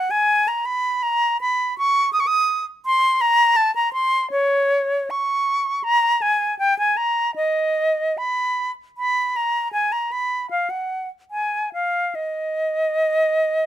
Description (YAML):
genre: classical, baroque-style fantasia for unaccompanied flute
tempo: 69-85 BPM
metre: 4/4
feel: rubato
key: Eb minor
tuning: A4 = 443 Hz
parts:
  - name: bright concert flute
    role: solo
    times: 0.0-13.7 s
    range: Db5 to Eb6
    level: -18 LUFS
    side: equal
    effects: none
room: light reverb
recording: close, detailed microphones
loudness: -18 LUFS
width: side -11 dB against mid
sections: 0.0-13.7 A section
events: none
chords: none